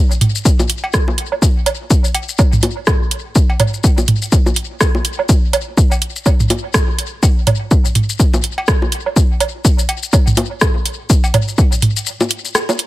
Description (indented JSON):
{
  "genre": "techno",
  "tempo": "124 BPM",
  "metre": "4/4",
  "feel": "swing 58% on 16ths",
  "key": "none",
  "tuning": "none",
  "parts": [
    { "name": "techno drum kit", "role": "drums", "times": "0.1-12.9 s", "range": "hi-hat, rim click, shaker", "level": "-19 LUFS", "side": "equal", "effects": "tape echo" },
    { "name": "electronic toms, bongos, cowbell and woodblock", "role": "percussion", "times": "0.2-12.8 s", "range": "none", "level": "-18 LUFS", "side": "right 2 dB", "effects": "dub echo" },
    { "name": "electronic kick drum", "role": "drums", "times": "0.5-11.7 s", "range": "none", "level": "-13 LUFS", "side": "equal", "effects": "none" }
  ],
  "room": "little or no reverb",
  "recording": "echo-heavy mix",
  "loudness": "-12 LUFS",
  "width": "side -16 dB against mid",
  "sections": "0.0-12.9 A section",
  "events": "break 12.1-12.9",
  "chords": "none"
}